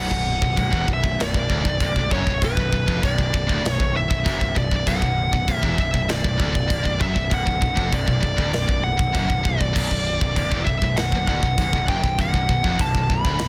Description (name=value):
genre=heavy metal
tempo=98 BPM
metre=4/4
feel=straight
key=B minor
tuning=A4 = 440 Hz
part: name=high-gain lead guitar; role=melody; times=0.0-13.5 s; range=B4 to B5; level=-27 LUFS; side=equal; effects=distortion, delay
part: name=heavy high-gain guitar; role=riff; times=0.0-13.5 s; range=B1 to F#2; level=-33 LUFS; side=equal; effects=distortion
part: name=high-gain distorted guitar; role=riff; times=0.0-13.5 s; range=B1 to F#2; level=-31 LUFS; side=equal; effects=none
part: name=overdriven electric guitar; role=riff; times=0.0-13.5 s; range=B1 to F#2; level=-34 LUFS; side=equal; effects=none
part: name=fuzz picked electric bass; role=bass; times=0.0-13.5 s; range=B0 to F#1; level=-29 LUFS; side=equal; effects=overdrive
part: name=big rock drum kit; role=drums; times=0.1-13.5 s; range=china cymbal, crash cymbal, kick drum, snare drum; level=-26 LUFS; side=equal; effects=none
room=little or no reverb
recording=dense, heavily limited modern master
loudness=-21 LUFS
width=mono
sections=0.0-13.5 A section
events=none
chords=0.0 Bm